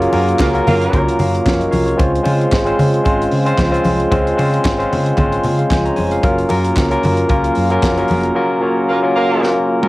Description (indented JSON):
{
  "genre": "disco",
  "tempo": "113 BPM",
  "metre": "4/4",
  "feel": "swing 56% on 16ths",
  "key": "unclear",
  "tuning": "A4 = 440 Hz",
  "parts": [
    { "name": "barky tine electric piano", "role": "accompaniment", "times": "0.0-9.9 s", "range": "Gb3 to Bb5", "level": "-16 LUFS", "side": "left 1 dB", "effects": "overdrive, cassette tape" },
    { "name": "mellow French horn section", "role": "sustained chords", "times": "0.0-9.9 s", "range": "Db3 to C5", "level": "-22 LUFS", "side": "right 3 dB", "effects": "cassette tape" },
    { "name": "hollow-body short-scale fingered electric bass", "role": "bass", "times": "0.0-8.3 s", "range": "F1 to Db3", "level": "-20 LUFS", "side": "equal", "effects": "none" },
    { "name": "tight funk drum kit", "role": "drums", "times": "0.0-9.9 s", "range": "handclaps, hi-hat, kick drum, snare drum, toms", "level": "-20 LUFS", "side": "equal", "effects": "cassette tape" },
    { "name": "congas", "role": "percussion", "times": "0.1-8.2 s", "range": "none", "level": "-21 LUFS", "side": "left 1 dB", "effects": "none" },
    { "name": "warm horn section", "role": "stabs", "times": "0.4-1.0, 8.9-9.5 s", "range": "Gb3 to Bb4", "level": "-20 LUFS", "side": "right 2 dB", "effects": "cassette tape, plate reverb" }
  ],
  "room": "moderate studio reverb, RT60 0.6 s",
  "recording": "home recording on cassette",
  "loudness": "-13 LUFS",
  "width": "side -19 dB against mid",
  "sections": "0.0-9.9 A section",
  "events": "band accent 0.0-2.0, 8.4-9.9; tine electric piano fill 0.9-2.0; drum fill 9.4-9.9",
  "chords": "0.0 Gbmaj7; 2.0 Dbmaj7; 6.2 Gbmaj7"
}